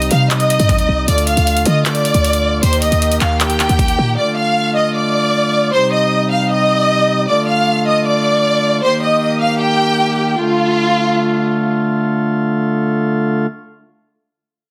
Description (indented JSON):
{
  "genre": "hip hop, trap",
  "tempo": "155 BPM",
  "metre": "4/4",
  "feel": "half-time",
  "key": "D phrygian",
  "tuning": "A4 = 438 Hz",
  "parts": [
    { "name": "warm studio violin section", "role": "melody", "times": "0.0-11.5 s", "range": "F4 to F6", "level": "-18 LUFS", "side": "equal", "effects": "none" },
    { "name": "pipe organ, cornet", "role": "sustained chords", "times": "0.0-13.5 s", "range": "C3 to G4", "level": "-20 LUFS", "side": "equal", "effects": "none" },
    { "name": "short 808-style bass", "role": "bass", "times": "0.0-4.2 s", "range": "C2 to D3", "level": "-19 LUFS", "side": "equal", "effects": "none" },
    { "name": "trap drum kit", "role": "drums", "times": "0.0-4.0 s", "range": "handclaps, hi-hat, kick drum", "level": "-21 LUFS", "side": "equal", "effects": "none" }
  ],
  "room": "light reverb",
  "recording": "dense, heavily limited modern master",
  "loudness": "-15 LUFS",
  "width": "mono",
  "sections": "0.0-10.4 A section; 10.4-13.5 B section",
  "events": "none",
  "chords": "0.0 Cm; 1.1 Dm; 2.6 Eb; 4.2 Dm; 5.7 Cm; 7.3 Dm; 8.8 Eb; 10.4 Dm",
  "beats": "0.31 0.69 | 1.08 1.47 1.85 2.24 | 2.63 3.02 3.40 3.79 | 4.18 4.57 4.95 5.34 | 5.73 6.11 6.50 6.89 | 7.27 7.66 8.05 8.44 | 8.82 9.21 9.60 9.98 | 10.37 10.76 11.14 11.53 | 11.92 12.31 12.69 13.08"
}